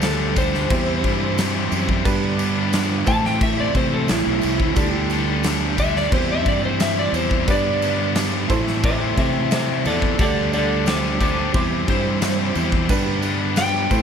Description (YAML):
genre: classic rock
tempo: 89 BPM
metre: 4/4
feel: straight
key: unclear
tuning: A4 = 440 Hz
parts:
  - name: electric slide guitar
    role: melody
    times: 0.0-14.0 s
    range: E4 to A5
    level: -24 LUFS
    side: equal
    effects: tape echo
  - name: bright upright piano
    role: accompaniment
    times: 0.0-14.0 s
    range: D4 to D5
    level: -30 LUFS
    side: right 6 dB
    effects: none
  - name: distorted electric guitar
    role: riff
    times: 0.0-14.0 s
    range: G2 to A4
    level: -26 LUFS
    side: left 16 dB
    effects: distortion
  - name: sludgy distorted guitar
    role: riff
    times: 0.0-14.0 s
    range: G2 to A4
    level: -26 LUFS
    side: right 12 dB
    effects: overdrive
  - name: fingered electric bass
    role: bass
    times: 0.0-14.0 s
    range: A1 to C3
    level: -25 LUFS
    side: left 1 dB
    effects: none
  - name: big rock drum kit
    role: drums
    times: 0.0-14.0 s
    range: crash cymbal, kick drum, snare drum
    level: -23 LUFS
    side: equal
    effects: none
  - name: tambourine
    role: percussion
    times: 0.0-14.0 s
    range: none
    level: -38 LUFS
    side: right 15 dB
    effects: none
room: small room ambience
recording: none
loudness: -17 LUFS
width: side -7 dB against mid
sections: 0.0-14.0 A section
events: electric slide guitar solo 0.0-14.0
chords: 0.0 Dsus4; 0.7 C/E; 2.1 G; 3.1 Am; 4.8 Dsus4; 6.1 C/E; 7.5 G; 8.5 Am; 10.2 Dsus4; 11.5 C/E; 12.9 G